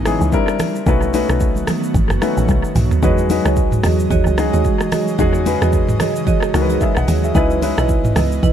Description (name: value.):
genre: amapiano.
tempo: 111 BPM.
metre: 4/4.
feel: swing 58% on 16ths.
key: E major.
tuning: A4 = 442 Hz.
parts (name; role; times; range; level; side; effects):
dark grand piano; accompaniment; 0.0-8.5 s; E3 to F#5; -20 LUFS; left 4 dB; none.
airy breathy pad; sustained chords; 0.0-8.5 s; C#3 to D#5; -25 LUFS; equal; chorus, sidechain pumping.
woody log drum bass; bass; 0.0-8.5 s; F#1 to E2; -18 LUFS; equal; none.
afro-pop drum kit; drums; 0.1-8.5 s; hi-hat, kick drum, rim click, shaker, toms; -19 LUFS; equal; analog delay.
congas; percussion; 0.1-8.5 s; none; -26 LUFS; right 3 dB; none.
marimba with medium mallets; stabs; 3.0-8.5 s; E4 to D#5; -21 LUFS; right 8 dB; analog delay.
room: little or no reverb.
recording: echo-heavy mix.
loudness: -14 LUFS.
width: side -9 dB against mid.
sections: 0.0-8.5 A section.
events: drum fill 2.5-3.0.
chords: 0.3 C9; 0.9 B7; 3.0 Emaj13; 7.4 C#m9.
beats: 0.32 | 0.86 1.41 1.95 2.49 | 3.03 3.57 4.11 4.65 | 5.19 5.73 6.27 6.81 | 7.35 7.89 8.43.